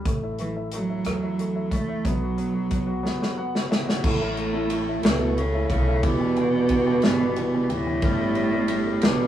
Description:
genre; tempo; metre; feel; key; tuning
six-eight pop ballad; 60 BPM (dotted quarters); 6/8; straight; unclear; A4 = 441 Hz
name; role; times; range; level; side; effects
clear grand piano; accompaniment; 0.0-9.3 s; E3 to F#5; -29 LUFS; left 2 dB; none
upright bass; bass; 0.1-9.3 s; E1 to E2; -31 LUFS; equal; none
natural country drum kit; drums; 0.1-9.2 s; crash cymbal, hi-hat, kick drum, ride cymbal, rim click, snare drum; -26 LUFS; equal; none
warm cello; melody; 0.4-9.3 s; A2 to A3; -25 LUFS; right 2 dB; none
fingerpicked steel-string acoustic guitar; arpeggios; 4.0-9.3 s; G2 to A4; -30 LUFS; right 4 dB; none
room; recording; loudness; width
wet small room reverb, RT60 0.6 s; rough rehearsal-room recording, studio reverb; -21 LUFS; side -11 dB against mid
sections
0.0-4.0 A section; 4.0-9.3 B section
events
drum fill 3.0-4.0; grand piano fill 3.0-4.0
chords
0.0 A5; 2.0 B5; 4.0 A; 6.0 Em7; 8.0 G

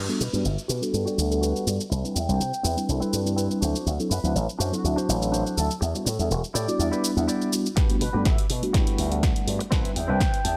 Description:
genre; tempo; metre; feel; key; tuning
filtered disco house; 123 BPM; 4/4; swing 53% on 16ths; G major; A4 = 440 Hz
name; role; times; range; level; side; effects
slap bass with an envelope filter; bass; 0.0-10.6 s; E1 to C3; -29 LUFS; equal; sidechain pumping, low-pass filter
mellow tine electric piano; accompaniment; 0.1-10.2 s; F#3 to F#5; -30 LUFS; equal; phaser, sidechain pumping, low-pass filter
direct-recorded clean electric guitar; riff; 0.1-10.6 s; C4 to A5; -37 LUFS; equal; sidechain pumping, low-pass filter
punchy analog drum machine; drums; 0.1-10.6 s; hi-hat, shaker, snare drum; -34 LUFS; equal; sidechain pumping on hats, sidechain pumping on perc, sidechain pumping on cymbals
dark trumpet section; melody; 0.2-10.6 s; F#4 to G5; -36 LUFS; equal; sidechain pumping, low-pass filter
electronic kick drum; drums; 7.8-10.3 s; none; -26 LUFS; equal; none
room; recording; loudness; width
light reverb, digital ambience; dry, gritty hardware recording; -25 LUFS; mono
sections
0.0-7.8 A section; 7.8-10.6 B section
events
filter sweep 0.0-7.8, 7.8-10.6; build-up 7.8-10.6; drum fill 7.8-10.6; clean electric guitar fill 10.2-10.6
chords
0.0 Gmaj7; 1.9 Cmaj7; 3.6 D7; 5.8 Em7; 7.8 Gmaj7; 9.7 Cmaj7

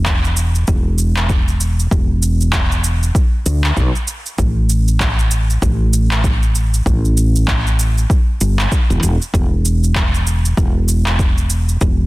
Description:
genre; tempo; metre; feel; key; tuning
organic downtempo; 97 BPM; 4/4; swing 60% on 16ths; E minor; A4 = 439 Hz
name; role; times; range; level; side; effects
woody fretless electric bass; bass; 0.0-12.1 s; E1 to D2; -15 LUFS; equal; wide subtle chorus, sidechain pumping
electronic handclaps and shaker; drums; 0.1-12.0 s; none; -22 LUFS; right 1 dB; none
electronic kick drum; drums; 0.1-12.0 s; none; -16 LUFS; equal; none
room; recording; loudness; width
little or no reverb; dense, heavily limited modern master; -13 LUFS; side -20 dB against mid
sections
0.0-12.1 A section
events
none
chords
none

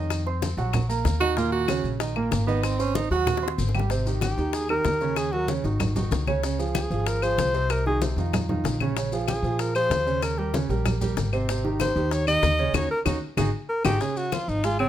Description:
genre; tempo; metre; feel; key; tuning
Afro-Cuban jazz; 190 BPM; 4/4; straight; Ab major from 3.9 s; A4 = 436 Hz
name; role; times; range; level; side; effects
dark grand piano; accompaniment; 0.0-14.9 s; Bb2 to C6; -28 LUFS; right 4 dB; none
upright bass; bass; 0.0-14.9 s; Ab1 to Bb2; -27 LUFS; left 1 dB; none
bongos; percussion; 0.1-14.9 s; none; -33 LUFS; left 10 dB; none
claves; percussion; 0.1-14.9 s; none; -33 LUFS; left 11 dB; none
congas; percussion; 0.1-14.9 s; none; -31 LUFS; left 2 dB; none
maracas; percussion; 0.1-14.8 s; none; -39 LUFS; left 5 dB; none
breathy tenor saxophone; second line; 1.2-3.6 s; Cb4 to Gb4; -26 LUFS; right 6 dB; none
clear alto saxophone; melody; 4.2-14.9 s; C4 to Eb5; -25 LUFS; left 1 dB; none
room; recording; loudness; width
light reverb; close, detailed microphones; -22 LUFS; side -11 dB against mid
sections
0.0-3.9 A section; 3.9-14.0 A section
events
tenor saxophone solo 0.0-3.9; drum fill 3.3-3.9, 13.1-14.0; alto saxophone solo 3.9-14.9; band accent 12.7-14.0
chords
0.1 F5; 0.7 Ebm/Bb; 1.4 Ebm7; 2.6 Ab7; 3.9 Abmaj7; 5.2 Ebm7; 5.8 Ab5; 6.4 Dbmaj7; 7.7 Cdim; 8.3 Bbmadd11; 9.0 Bbm9; 10.2 Eb6; 11.5 Abmaj7; 12.7 Ebm7; 13.4 Ab5; 14.0 Db

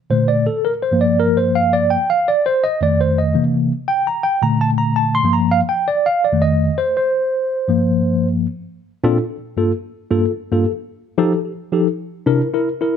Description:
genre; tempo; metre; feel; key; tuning
disco; 111 BPM; 4/4; straight; G minor; A4 = 441 Hz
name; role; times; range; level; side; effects
tine electric piano; solo; 0.1-13.0 s; F2 to C6; -15 LUFS; equal; medium stereo tremolo
room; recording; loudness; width
light reverb, digital ambience; dark, warm production; -15 LUFS; side -8 dB against mid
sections
0.0-8.8 A section; 8.8-13.0 B section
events
tine electric piano solo 0.0-8.8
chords
0.1 Bbmaj7; 0.9 Gm7; 2.0 F7; 3.4 C7; 4.4 Bbmaj7; 5.2 Gm7; 6.3 F7; 7.7 Gm7; 8.8 Bbmaj9; 9.6 Gm7; 10.7 F7; 12.0 C7

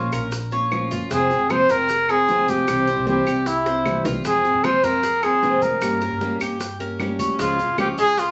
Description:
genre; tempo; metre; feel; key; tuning
latin, Cuban son and guajira; 153 BPM; 4/4; straight; F harmonic minor; A4 = 440 Hz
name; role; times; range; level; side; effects
breathy trumpet; melody; 0.0-8.3 s; E4 to C5; -22 LUFS; equal; none
fingerpicked steel-string acoustic guitar; accompaniment; 0.0-8.2 s; C3 to G4; -27 LUFS; equal; none
Cuban tres; arpeggios; 0.0-8.3 s; Ab3 to Db5; -32 LUFS; equal; none
upright bass; bass; 0.0-8.3 s; F1 to G2; -35 LUFS; equal; none
bongos; percussion; 0.1-8.3 s; none; -36 LUFS; equal; none
claves; percussion; 0.1-8.0 s; none; -34 LUFS; equal; none
congas; percussion; 0.1-8.3 s; none; -35 LUFS; equal; none
maracas; percussion; 0.1-8.3 s; none; -43 LUFS; equal; none
room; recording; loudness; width
wet studio reverb, RT60 0.5 s; vinyl crackle, nothing above 7.9 kHz; -21 LUFS; mono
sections
0.0-8.3 A section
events
drum fill 3.7-4.2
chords
0.0 Bbm; 1.1 Fm; 2.7 C; 4.2 Fm; 5.8 Gdim; 7.4 Db

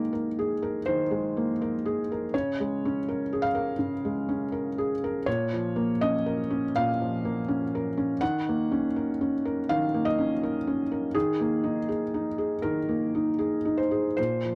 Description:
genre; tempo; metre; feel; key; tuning
neoclassical minimalist piano; 81 BPM; 4/4; rubato; unclear; A4 = 440 Hz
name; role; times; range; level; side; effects
felt-muted upright piano; solo; 0.0-14.6 s; Bb2 to Gb5; -28 LUFS; equal; none
room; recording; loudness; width
moderate booth ambience, RT60 0.2 s; none; -28 LUFS; mono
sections
0.0-14.6 A section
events
none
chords
0.0 Absus2/Eb; 2.3 Db6; 5.3 Bbm; 8.2 Ebm7; 11.1 Absus2/Eb

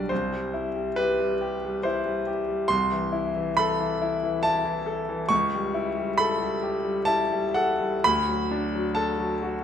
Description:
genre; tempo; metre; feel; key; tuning
classical, romantic character piece for solo piano; 59-72 BPM; 3/4; rubato; unclear; A4 = 440 Hz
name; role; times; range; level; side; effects
clear grand piano; solo; 0.0-9.6 s; B1 to C#6; -23 LUFS; left 1 dB; none
room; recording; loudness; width
moderate recital hall reverb, RT60 1.3 s; none; -23 LUFS; side -8 dB against mid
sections
0.0-9.6 A section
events
none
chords
0.1 C; 2.7 Am/C; 5.3 A7/C#; 8.0 D

